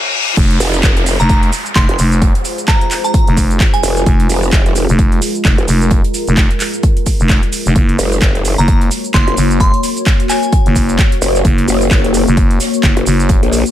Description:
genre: bass house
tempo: 130 BPM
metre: 4/4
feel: swing 58% on 16ths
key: F phrygian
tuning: A4 = 439 Hz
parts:
  - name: reverse cymbal, downlifter and noise sweep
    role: sound effects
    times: 0.0-4.1, 13.7 s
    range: none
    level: -21 LUFS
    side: left 2 dB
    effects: none
  - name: deep dark ambient pad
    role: sustained chords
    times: 1.6-13.7 s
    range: Ab3 to Db5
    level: -20 LUFS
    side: left 3 dB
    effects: chorus, built-in reverb, sidechain pumping
  - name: growling FM bass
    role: bass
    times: 0.4-13.4 s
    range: F1 to Gb1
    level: -13 LUFS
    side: equal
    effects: overdrive, sidechain pumping
  - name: electronic kick drum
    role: drums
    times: 0.4-13.4 s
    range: none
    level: -12 LUFS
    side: equal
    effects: high-pass filter on kick
  - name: garage drum kit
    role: drums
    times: 0.4-13.7 s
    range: crash cymbal, handclaps, hi-hat, shaker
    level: -20 LUFS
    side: right 1 dB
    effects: overdrive, high-pass filter on snare, high-pass filter on hats, high-pass filter on cymbals, high-pass filter on perc
  - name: soft-mallet drum kit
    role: drums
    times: 0.4-13.7 s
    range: hi-hat, snare drum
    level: -30 LUFS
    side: right 3 dB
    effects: none
  - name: growl bass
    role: bass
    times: 0.6-13.6 s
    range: F1 to Bb1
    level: -15 LUFS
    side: equal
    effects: chorus, tube saturation, sidechain pumping
  - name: glassy synth bell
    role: melody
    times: 1.2-4.2, 8.6-10.8 s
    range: Ab5 to C6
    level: -20 LUFS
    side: right 1 dB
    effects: chorus, tape echo
room: little or no reverb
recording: high-pass filter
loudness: -10 LUFS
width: side -12 dB against mid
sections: 0.4-13.7 A section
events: reverse cymbal 0.0-0.4; stop 0.0-0.4; drop 0.4-13.7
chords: 0.4 Fm; 7.8 Gb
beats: | 0.37 0.83 1.29 1.76 | 2.22 2.68 3.14 3.60 | 4.06 4.53 4.99 5.45 | 5.91 6.37 6.83 7.29 | 7.76 8.22 8.68 9.14 | 9.60 10.06 10.53 10.99 | 11.45 11.91 12.37 12.83 | 13.29

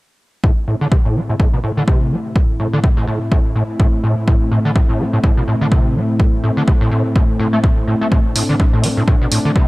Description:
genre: acid house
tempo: 125 BPM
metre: 4/4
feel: swing 57% on 16ths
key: A minor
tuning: A4 = 440 Hz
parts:
  - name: warm analog pad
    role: sustained chords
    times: 0.4-9.7 s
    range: A2 to E4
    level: -21 LUFS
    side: equal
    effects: chorus, sidechain pumping
  - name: overdriven acid bass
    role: riff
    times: 0.4-9.7 s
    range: A2 to A3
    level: -18 LUFS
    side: equal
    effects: tube saturation, ensemble chorus, sidechain pumping, analog delay
  - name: electronic kick drum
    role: drums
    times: 0.4-9.7 s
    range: none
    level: -14 LUFS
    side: equal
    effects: none
  - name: electronic hi-hat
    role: drums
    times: 8.4-9.4 s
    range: none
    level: -20 LUFS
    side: right 1 dB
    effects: none
room: little or no reverb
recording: dry, gritty hardware recording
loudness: -13 LUFS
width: side -21 dB against mid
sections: 0.4-9.7 A section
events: filter sweep on acid bass 0.4-9.7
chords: 0.4 Am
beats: | 0.44 0.92 1.40 1.88 | 2.36 2.84 3.32 3.80 | 4.28 4.76 5.24 5.72 | 6.20 6.68 7.16 7.64 | 8.12 8.60 9.08 9.56

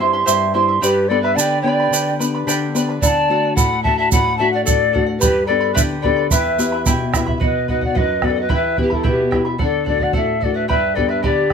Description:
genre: andean folk, Andean ensemble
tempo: 110 BPM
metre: 2/4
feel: straight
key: unclear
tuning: A4 = 440 Hz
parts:
  - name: charango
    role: accompaniment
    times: 0.0-11.5 s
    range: E4 to C6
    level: -23 LUFS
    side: right 3 dB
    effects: none
  - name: nylon-string guitar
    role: accompaniment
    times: 0.0-11.5 s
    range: E2 to G4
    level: -22 LUFS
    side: left 4 dB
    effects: none
  - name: tube shaker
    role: percussion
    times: 0.3-7.3 s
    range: none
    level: -22 LUFS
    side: right 7 dB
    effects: none
  - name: mellow quena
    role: melody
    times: 0.8-11.5 s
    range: A4 to B5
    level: -20 LUFS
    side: left 2 dB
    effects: none
  - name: bright reedy pan flute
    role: second line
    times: 0.8-11.5 s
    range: E4 to F#5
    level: -21 LUFS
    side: equal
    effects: none
  - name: bombo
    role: percussion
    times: 3.0-11.5 s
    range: none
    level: -20 LUFS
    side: right 3 dB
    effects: none
room: light reverb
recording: none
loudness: -15 LUFS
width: side -6 dB against mid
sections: 0.0-7.4 A section; 7.4-11.5 B section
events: none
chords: 0.0 C; 0.8 G; 3.0 D; 5.2 G; 6.3 Em; 7.4 B; 8.5 Em; 9.6 D; 10.7 G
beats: 0.27 | 0.82 1.38 | 1.93 2.48 | 3.02 3.57 | 4.12 4.67 | 5.22 5.77 | 6.31 6.86 | 7.41 7.96 | 8.50 9.05 | 9.59 10.14 | 10.68 11.23

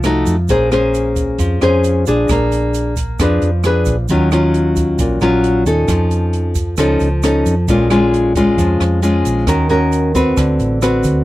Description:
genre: bossa nova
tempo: 134 BPM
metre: 4/4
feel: straight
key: unclear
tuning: A4 = 440 Hz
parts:
  - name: nylon-string guitar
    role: accompaniment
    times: 0.0-11.2 s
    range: Bb2 to C5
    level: -14 LUFS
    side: left 1 dB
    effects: none
  - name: hollow-body short-scale fingered electric bass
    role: bass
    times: 0.0-11.2 s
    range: A1 to F2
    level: -17 LUFS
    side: right 1 dB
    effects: none
  - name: open jazz drum kit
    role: drums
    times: 0.0-11.2 s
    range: hi-hat, kick drum, rim click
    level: -22 LUFS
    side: right 1 dB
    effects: none
  - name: tube shaker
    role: percussion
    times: 0.0-11.2 s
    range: none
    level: -34 LUFS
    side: right 18 dB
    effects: none
room: little or no reverb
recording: dry, close 1970s-style studio recording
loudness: -12 LUFS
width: side -16 dB against mid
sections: 0.0-11.2 A section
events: none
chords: 0.5 Bbm9; 2.3 Bb7b9; 4.1 Ebm9; 5.9 Faug7; 7.7 Bbm7; 9.5 Ebm7; 10.4 D6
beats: 0.04 | 0.49 0.94 1.39 1.84 | 2.29 2.74 3.19 3.64 | 4.09 4.54 4.99 5.44 | 5.89 6.33 6.78 7.23 | 7.68 8.13 8.58 9.03 | 9.47 9.92 10.37 10.82

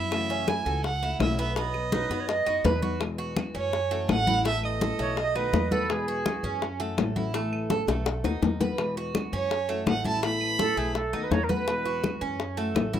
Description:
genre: latin, Cuban son and guajira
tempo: 166 BPM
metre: 4/4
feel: straight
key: E major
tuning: A4 = 439 Hz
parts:
  - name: warm violin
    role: melody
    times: 0.0-5.7, 9.4-10.9 s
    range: C#5 to B5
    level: -29 LUFS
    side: right 4 dB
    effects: plate reverb
  - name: nylon-string guitar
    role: accompaniment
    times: 0.0-13.0 s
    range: B2 to F#4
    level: -34 LUFS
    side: left 5 dB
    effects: plate reverb
  - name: Cuban tres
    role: arpeggios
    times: 0.0-13.0 s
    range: A3 to B4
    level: -33 LUFS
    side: right 4 dB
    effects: plate reverb
  - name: upright bass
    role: bass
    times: 0.0-13.0 s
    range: A1 to F#2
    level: -33 LUFS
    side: equal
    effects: none
  - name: bongos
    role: percussion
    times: 0.1-12.9 s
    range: none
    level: -29 LUFS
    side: left 7 dB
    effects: none
  - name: claves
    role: percussion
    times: 0.1-12.9 s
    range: none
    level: -42 LUFS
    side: right 3 dB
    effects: none
  - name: congas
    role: percussion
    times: 0.1-13.0 s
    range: none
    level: -32 LUFS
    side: left 1 dB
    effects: none
  - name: silver concert flute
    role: second line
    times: 1.9-6.6, 10.6-12.2 s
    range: G#4 to D#5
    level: -29 LUFS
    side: right 3 dB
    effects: plate reverb
room: wet studio reverb, RT60 0.5 s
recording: rough home demo mix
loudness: -24 LUFS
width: side -10 dB against mid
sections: 0.0-3.0 A section; 3.0-13.0 B section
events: drum fill 7.7-8.8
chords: 0.1 F#m7; 1.6 B; 3.0 Eadd9; 3.7 F#m7; 4.5 Asus2; 5.2 B7; 5.9 Eadd9; 6.6 F#m7; 7.3 Asus2; 8.1 B7; 8.8 Eadd9; 9.5 F#m7; 10.2 Asus2; 11.0 B7; 11.7 Eadd9; 12.4 F#m7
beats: | 0.12 0.48 0.84 1.20 | 1.56 1.93 2.29 2.65 | 3.01 3.37 3.73 4.09 | 4.45 4.82 5.18 5.54 | 5.90 6.26 6.62 6.98 | 7.34 7.70 8.06 8.43 | 8.79 9.15 9.51 9.87 | 10.23 10.59 10.95 11.31 | 11.67 12.04 12.40 12.76

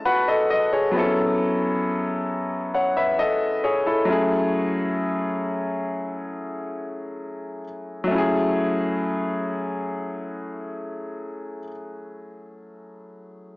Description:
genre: R&B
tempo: 67 BPM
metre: 4/4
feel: straight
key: F# dorian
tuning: A4 = 440 Hz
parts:
  - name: clear concert grand piano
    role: solo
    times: 0.0-13.6 s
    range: F#3 to A5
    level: -22 LUFS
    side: left 1 dB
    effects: cassette tape
room: moderate spring reverb, RT60 2.1 s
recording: home recording on cassette, small speaker sound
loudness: -21 LUFS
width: side -23 dB against mid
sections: 0.9-8.1 A section; 8.1-11.7 B section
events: grand piano fill 0.0-0.9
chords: 0.0 F#m7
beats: 0.05 | 0.95 1.84 2.74 3.63 | 4.53 5.43 6.32 7.22 | 8.11 9.01 9.90 10.80

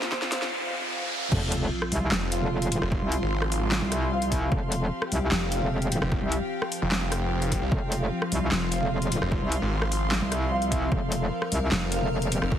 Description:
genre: heavy wobble dubstep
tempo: 150 BPM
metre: 4/4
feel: half-time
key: unclear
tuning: A4 = 439 Hz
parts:
  - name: clear grand piano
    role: melody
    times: 0.0-0.5 s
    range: F4 to C5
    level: -36 LUFS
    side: left 1 dB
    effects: ping-pong delay
  - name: evolving wavetable pad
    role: sustained chords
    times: 0.0-12.6 s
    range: F2 to F5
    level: -33 LUFS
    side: left 1 dB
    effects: phaser, built-in reverb, sidechain pumping
  - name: dubstep drum kit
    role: drums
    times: 0.0-12.5 s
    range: crash cymbal, handclaps, hi-hat, rim click, snare drum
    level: -30 LUFS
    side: equal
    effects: none
  - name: riser and sub drop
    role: sound effects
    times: 0.0-2.9 s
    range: none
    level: -32 LUFS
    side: equal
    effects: none
  - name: dark chamber string section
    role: texture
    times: 0.0-12.6 s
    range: C4 to F6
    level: -36 LUFS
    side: equal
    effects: sidechain pumping
  - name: electronic kick drum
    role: drums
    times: 0.1-12.6 s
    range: none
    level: -28 LUFS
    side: equal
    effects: overdrive
  - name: metallic wobble bass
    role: bass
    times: 1.3-12.4 s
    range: F1 to C2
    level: -26 LUFS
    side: equal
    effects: chorus, overdrive
  - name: snarling distorted saw bass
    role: bass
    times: 2.1-12.6 s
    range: F1 to C2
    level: -28 LUFS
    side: equal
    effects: distortion, overdrive
  - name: mellow brass ensemble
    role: stabs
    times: 2.3-5.7, 8.7-12.1 s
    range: F4 to F5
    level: -34 LUFS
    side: equal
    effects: ping-pong delay
room: light reverb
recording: heavily compressed radio sound, high-pass filter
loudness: -24 LUFS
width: side -10 dB against mid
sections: 0.0-1.3 A section; 1.3-12.6 B section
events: build-up 0.0-1.3; drum fill 0.0-0.5; riser 0.0-1.3; break 0.5-1.3; drop 1.3-12.6; impact 1.3-2.9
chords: 0.0 F5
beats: 0.12 0.52 0.92 | 1.32 1.72 2.12 2.52 | 2.92 3.32 3.72 4.12 | 4.52 4.92 5.32 5.72 | 6.12 6.52 6.92 7.32 | 7.72 8.12 8.52 8.92 | 9.32 9.72 10.12 10.52 | 10.92 11.32 11.72 12.12 | 12.52

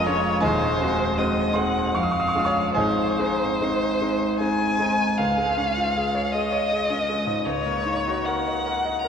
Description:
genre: classical, romantic duo for violin and grand piano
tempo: 71-81 BPM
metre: 3/4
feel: rubato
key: Db major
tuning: A4 = 445 Hz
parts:
  - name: rich violin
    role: melody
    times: 0.0-9.1 s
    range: C5 to Bb5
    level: -24 LUFS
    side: left 1 dB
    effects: none
  - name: bright concert grand piano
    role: accompaniment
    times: 0.0-9.1 s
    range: Eb1 to F6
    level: -23 LUFS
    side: equal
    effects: none
room: wet church reverb, RT60 3.8 s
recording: dark, warm production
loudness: -20 LUFS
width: side -7 dB against mid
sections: 0.0-5.2 A section; 5.2-9.1 B section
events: none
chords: 0.4 Ab7/Eb; 1.9 Db/F; 2.8 Ab; 5.2 Db; 7.5 Ebm7/Db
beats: | 0.43 1.18 1.95 | 2.77 3.60 4.40 | 5.18 5.95 6.71 | 7.46 8.26 9.02

